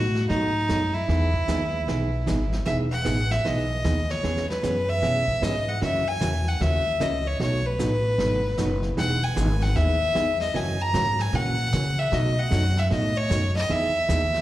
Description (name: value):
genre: country, western swing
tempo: 152 BPM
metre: 4/4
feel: swing 64% on 8ths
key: E major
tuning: A4 = 440 Hz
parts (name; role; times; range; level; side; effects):
- clear fiddle; melody; 0.0-14.4 s; D#4 to A#5; -26 LUFS; equal; plate reverb, slapback echo
- hollow-body jazz guitar; accompaniment; 0.0-14.2 s; B2 to G#4; -29 LUFS; right 2 dB; plate reverb, slapback echo
- upright bass; bass; 0.0-14.4 s; E1 to C#3; -25 LUFS; equal; none
- vintage brush drum kit; drums; 0.1-14.4 s; brushed snare drum, hi-hat, kick drum, snare drum; -35 LUFS; left 1 dB; none
room: moderate club reverb, RT60 0.8 s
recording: live gig heard through the venue's PA, recital hall reverb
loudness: -21 LUFS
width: side -15 dB against mid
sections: 0.0-2.7 A section; 2.7-14.4 A section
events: none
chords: 0.0 B7; 1.1 Emaj7; 4.2 C#m7/E; 5.8 F#7; 7.4 B7; 9.0 Emaj7; 10.5 F#7; 12.1 B7; 13.7 Emaj7